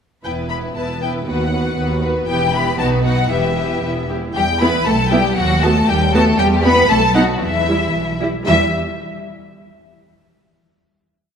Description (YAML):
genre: quick classical-period movement for string orchestra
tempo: 117 BPM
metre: 2/4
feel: straight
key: E minor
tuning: A4 = 442 Hz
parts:
  - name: rich studio violin section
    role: melody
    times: 0.2-8.8 s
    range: E5 to B5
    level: -20 LUFS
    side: left 4 dB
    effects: none
  - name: warm studio violin section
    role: second line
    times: 0.2-8.8 s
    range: E4 to E5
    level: -22 LUFS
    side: left 2 dB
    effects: none
  - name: rich studio viola section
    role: accompaniment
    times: 0.2-8.8 s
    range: G3 to F#4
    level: -22 LUFS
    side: right 2 dB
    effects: none
  - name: rich studio cello section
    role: bass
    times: 0.2-8.8 s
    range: D#2 to B3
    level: -22 LUFS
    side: right 1 dB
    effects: none
  - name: rich studio double bass section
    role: bass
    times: 0.2-8.8 s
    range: E1 to E2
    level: -22 LUFS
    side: right 2 dB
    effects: none
room: moderate concert hall reverb, RT60 2.4 s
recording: none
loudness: -14 LUFS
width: side -7 dB against mid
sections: 0.2-4.4 A section; 4.4-8.5 A section; 8.5-9.5 final chord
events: none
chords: 0.2 E5; 1.3 B/D#; 2.3 Em; 2.8 B; 3.3 Em; 5.4 B/D#; 6.4 Em; 6.9 B7; 7.4 Em